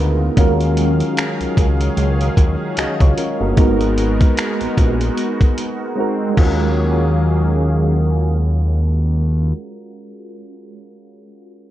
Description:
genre	contemporary R&B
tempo	75 BPM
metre	4/4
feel	swing 58% on 16ths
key	Eb minor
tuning	A4 = 442 Hz
part	soft electric-piano-like synth keys	accompaniment	0.0-11.7 s	Ab3 to Eb5	-22 LUFS	right 1 dB	chorus, phaser, low-pass filter
part	warm analog pad	sustained chords	0.0-9.5 s	Db3 to F5	-24 LUFS	left 1 dB	chorus, tremolo, sidechain pumping, low-pass filter
part	fat analog bass	bass	0.0-9.5 s	G1 to Eb2	-17 LUFS	equal	none
part	dusty soul sampler-style drum kit	drums	0.4-6.6 s	crash cymbal, finger snaps, hi-hat, kick drum	-16 LUFS	equal	none
room	light reverb, digital ambience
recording	worn, warbling old tape, cassette tape, warbly pitch drift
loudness	-14 LUFS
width	side -13 dB against mid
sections	0.4-6.8 A section; 6.8-10.0 B section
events	silent gap 6.0-6.8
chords	0.4 Ebm11; 3.6 Abm9; 6.0 Ab7; 6.4 Ebm11

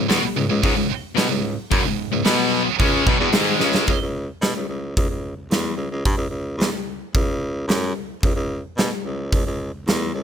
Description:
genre	hard rock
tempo	110 BPM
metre	4/4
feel	straight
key	C# minor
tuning	A4 = 439 Hz
part	crunchy overdriven guitar	riff	0.0-3.9 s	C#2 to C#4	-22 LUFS	left 13 dB	none
part	heavy high-gain guitar	riff	0.0-3.9 s	C#2 to C#4	-22 LUFS	right 14 dB	distortion
part	bright baritone saxophone	bass	0.0-10.2 s	C#2 to B2	-25 LUFS	equal	none
part	big rock drum kit	drums	0.1-10.0 s	hi-hat, kick drum, snare drum	-22 LUFS	equal	none
room	small room reverb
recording	none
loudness	-19 LUFS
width	side -8 dB against mid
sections	0.0-3.9 A section; 3.9-10.2 B section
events	drum fill 3.6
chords	0.0 C#m; 3.9 N.C.

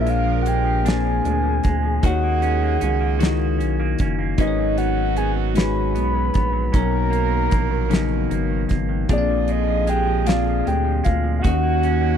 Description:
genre	slow six-eight R&B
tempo	51 BPM (dotted quarters)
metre	6/8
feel	straight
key	G# minor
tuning	A4 = 440 Hz
part	soft octave-layered synth lead	melody	0.0-12.2 s	D5 to B5	-25 LUFS	left 1 dB	chorus
part	clean electric guitar	second line	0.0-12.2 s	G#2 to F#4	-29 LUFS	right 6 dB	tape echo
part	bell-like tine electric piano	accompaniment	0.0-12.2 s	A#2 to E#5	-25 LUFS	left 15 dB	none
part	warm horn section	stabs	0.0-12.2 s	D3 to A#4	-27 LUFS	right 18 dB	none
part	rubbery square bass	bass	0.0-12.2 s	F#1 to D#2	-22 LUFS	right 1 dB	none
part	damped 70s drum kit	drums	0.1-12.0 s	hi-hat, kick drum, snare drum	-20 LUFS	right 1 dB	none
room	little or no reverb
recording	dry, close 1970s-style studio recording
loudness	-18 LUFS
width	side -8 dB against mid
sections	0.0-12.2 A section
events	none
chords	0.0 A#7; 2.0 D#m7; 4.4 G#m11; 9.1 A#7; 11.4 D#m7

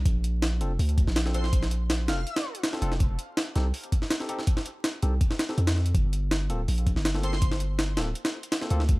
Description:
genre	drum and bass, jungle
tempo	163 BPM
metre	4/4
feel	straight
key	G minor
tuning	A4 = 440 Hz
part	long sustained 808-style bass	bass	0.0-9.0 s	D1 to F2	-26 LUFS	equal	none
part	jungle sampler-style drum kit	drums	0.1-9.0 s	hi-hat, kick drum, snare drum	-26 LUFS	equal	overdrive, small room ambience
part	barky tine electric piano	stabs	0.6-8.8 s	Bb3 to A4	-37 LUFS	left 1 dB	dub echo
part	airy dreamy lead	melody	1.3-2.5, 7.2-7.4 s	C5 to F5	-39 LUFS	equal	chorus, dub echo
room	little or no reverb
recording	vinyl crackle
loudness	-24 LUFS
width	side -22 dB against mid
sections	0.0-9.0 A section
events	none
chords	0.1 Bbmaj7; 3.0 F7; 5.9 Gm11

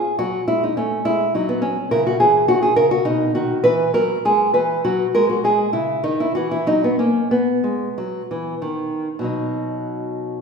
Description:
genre	classical, baroque-style dance for nylon-string guitar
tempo	90-106 BPM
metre	3/4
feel	rubato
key	B major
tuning	A4 = 439 Hz
part	nylon-string guitar	solo	0.0-10.4 s	B2 to B4	-17 LUFS	equal	none
room	wet recital hall reverb, RT60 1.5 s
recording	recorded in a church or concert hall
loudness	-17 LUFS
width	side -5 dB against mid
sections	0.0-9.3 A section; 9.3-10.4 B section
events	none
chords	0.2 F#5; 1.9 C#m69; 3.1 B; 3.7 E; 4.9 F#add9; 5.5 G#5; 6.7 F#; 7.3 B

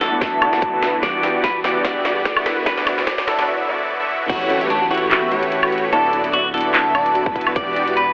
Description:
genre	future bass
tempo	147 BPM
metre	4/4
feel	swing 54% on 16ths, half-time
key	D major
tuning	A4 = 440 Hz
part	electric guitar at the edge of break-up	melody	0.0-8.1 s	D4 to D5	-20 LUFS	equal	phaser, sidechain pumping, tape echo
part	glassy digital keys	accompaniment	0.0-4.3 s	E3 to F#4	-30 LUFS	equal	chorus, sidechain pumping
part	ethereal airy pad	sustained chords	0.0-3.5 s	G3 to D5	-36 LUFS	equal	none
part	supersaw chords	riff	0.0-8.0 s	D3 to E5	-20 LUFS	equal	sidechain pumping, low-pass filter
part	dubstep drum kit	drums	0.0-8.1 s	crash cymbal, handclaps, hi-hat, snare drum, woodblock	-22 LUFS	equal	high-pass filter on snare, high-pass filter on hats, high-pass filter on perc, high-pass filter on cymbals, high-pass filter on room
part	riser, swell and downlifter	sound effects	0.7-7.6 s	none	-31 LUFS	equal	none
part	electronic kick drum	drums	0.2-4.4, 7.3-7.6 s	none	-26 LUFS	equal	none
part	airy dreamy lead	arpeggios	4.3-8.0 s	B4 to E5	-29 LUFS	equal	none
part	thumb-piano-like synth pluck	arpeggios	4.3-8.1 s	B3 to A4	-32 LUFS	equal	none
part	saturated sub bass	bass	4.3-8.1 s	D1 to A1	-34 LUFS	equal	sidechain pumping
room	moderate shimmer reverb, RT60 7.0 s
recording	high-pass filter, telephone sound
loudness	-16 LUFS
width	side -28 dB against mid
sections	0.0-4.3 A section; 4.3-8.1 B section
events	build-up 0.0-4.3; drum fill 0.0-3.5; filter sweep on supersaw synth 0.0-4.3; break 3.5-4.3; swell 3.5-4.3; drop 4.3-8.1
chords	0.0 D6; 1.0 Em9; 2.5 D6; 4.3 A13; 5.9 D6; 7.6 Em9

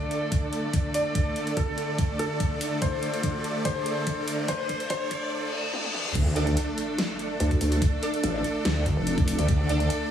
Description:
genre	heavy wobble dubstep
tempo	144 BPM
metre	4/4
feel	half-time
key	unclear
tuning	A4 = 445 Hz
part	clear concert grand piano	melody	0.0-5.3 s	A4 to D5	-31 LUFS	left 1 dB	tape echo
part	supersaw chords	sustained chords	0.0-10.1 s	D3 to D5	-31 LUFS	right 1 dB	sidechain pumping
part	riser, reverse cymbal and sub drop	sound effects	1.8-7.8 s	none	-36 LUFS	left 1 dB	none
part	warm studio string section	texture	0.0-10.1 s	D4 to D5	-36 LUFS	equal	sidechain pumping
part	big-room dance drum kit	drums	0.1-10.0 s	crash cymbal, hi-hat, snare drum, toms	-33 LUFS	left 1 dB	none
part	electronic kick drum	drums	0.3-9.6 s	none	-26 LUFS	equal	none
part	growl bass	bass	6.2-9.9 s	A1 to D2	-24 LUFS	equal	chorus, overdrive
part	orchestra-hit-like synth stab	stabs	6.4-9.8 s	D4 to D5	-32 LUFS	right 3 dB	built-in reverb, tape echo
part	vowel-sweep wobble bass	bass	7.4-9.4 s	F1 to D2	-24 LUFS	equal	chorus, overdrive
room	moderate digital room reverb, RT60 1.1 s, digital ambience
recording	heavily compressed radio sound, high-pass filter, small room ambience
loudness	-24 LUFS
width	side -9 dB against mid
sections	0.0-6.2 A section; 6.2-10.1 B section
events	build-up 0.0-6.2; filter sweep 0.0-6.2; riser 1.8-5.3; drum fill 2.8-5.3, 5.7-6.2; reverse cymbal 5.3-6.2; drop 6.2-10.1; impact 6.2-7.8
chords	0.0 D5

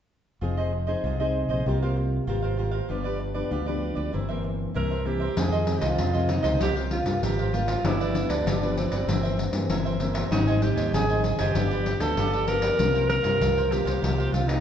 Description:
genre	samba and choro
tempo	97 BPM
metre	4/4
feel	straight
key	F minor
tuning	A4 = 445 Hz
part	cavaquinho	accompaniment	0.4-14.4 s	E4 to Ab5	-32 LUFS	right 2 dB	none
part	nylon-string guitar	accompaniment	0.4-14.6 s	F2 to Ab4	-30 LUFS	left 2 dB	none
part	fingered electric bass	bass	0.4-14.6 s	F1 to G2	-28 LUFS	equal	none
part	breathy alto saxophone	melody	4.8-14.6 s	C4 to Bb4	-27 LUFS	right 1 dB	none
part	pandeiro	percussion	5.4-14.6 s	none	-29 LUFS	left 2 dB	none
room	wet recital hall reverb, RT60 1.3 s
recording	recorded in a church or concert hall, nothing above 7.9 kHz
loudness	-23 LUFS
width	side -9 dB against mid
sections	0.4-5.4 A section; 5.4-14.6 B section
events	none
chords	0.4 Fm7; 1.7 C7sus4; 2.9 G7; 4.1 C7/G; 5.4 Fm7; 6.6 C7sus4; 7.8 G7; 9.1 C7/G; 10.3 Abmaj7; 11.6 G7; 12.8 C7sus4

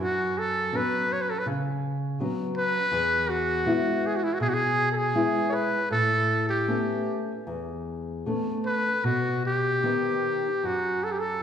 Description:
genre	fado-style ballad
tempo	74-83 BPM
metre	4/4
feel	rubato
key	unclear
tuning	A4 = 441 Hz
part	trumpet with metal mute	melody	0.0-11.4 s	E4 to C#5	-25 LUFS	equal	none
part	nylon-string guitar	accompaniment	0.0-11.4 s	E2 to E4	-28 LUFS	left 2 dB	none
room	wet recital hall reverb, RT60 1.6 s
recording	heard from further back in the room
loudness	-24 LUFS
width	side -8 dB against mid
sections	0.0-11.4 A section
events	none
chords	0.0 F#sus4; 2.9 E; 5.9 Aadd9; 9.0 B

